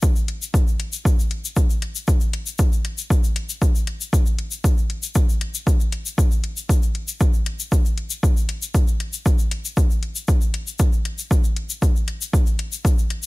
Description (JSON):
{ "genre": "techno", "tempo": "117 BPM", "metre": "4/4", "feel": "straight", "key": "none", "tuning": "none", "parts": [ { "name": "electronic kick drum", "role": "drums", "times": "0.0-13.0 s", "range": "none", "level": "-18 LUFS", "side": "equal", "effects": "overdrive, studio reverb" }, { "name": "egg shaker", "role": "percussion", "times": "0.0-13.3 s", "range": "none", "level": "-29 LUFS", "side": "left 5 dB", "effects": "none" }, { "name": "electronic hi-hat", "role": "drums", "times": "0.3-13.2 s", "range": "none", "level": "-30 LUFS", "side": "left 5 dB", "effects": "overdrive, studio reverb" } ], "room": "studio reverb", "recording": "none", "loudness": "-18 LUFS", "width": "side -21 dB against mid", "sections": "0.0-13.3 A section", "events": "none", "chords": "none" }